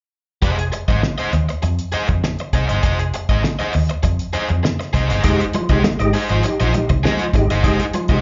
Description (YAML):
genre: funk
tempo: 100 BPM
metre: 4/4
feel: straight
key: F minor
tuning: A4 = 440 Hz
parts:
  - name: crunchy overdriven guitar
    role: accompaniment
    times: 0.4-8.2 s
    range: Ab4 to Eb5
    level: -25 LUFS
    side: equal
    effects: slapback echo
  - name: vintage muted fingered electric bass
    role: bass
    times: 0.4-8.2 s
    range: F1 to F2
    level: -22 LUFS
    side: equal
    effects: none
  - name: cloth-damped thuddy drum kit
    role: drums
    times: 0.4-8.2 s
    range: hi-hat, kick drum, snare drum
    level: -23 LUFS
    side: equal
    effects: none
  - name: percussive tonewheel organ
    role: stabs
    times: 5.2-8.2 s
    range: F3 to G4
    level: -23 LUFS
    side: equal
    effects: overdrive, chorus vibrato, fast rotary speaker, slapback echo
  - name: congas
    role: percussion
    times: 5.5-8.1 s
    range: none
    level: -28 LUFS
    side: equal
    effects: slapback echo
room: light reverb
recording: live gig heard through the venue's PA, club reverb, nothing above 7.4 kHz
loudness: -19 LUFS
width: mono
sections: 0.4-5.2 A section; 5.2-8.2 B section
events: none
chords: 0.4 Fm7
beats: | 0.43 1.03 1.63 2.23 | 2.83 3.44 4.04 4.64 | 5.24 5.84 6.44 7.04 | 7.64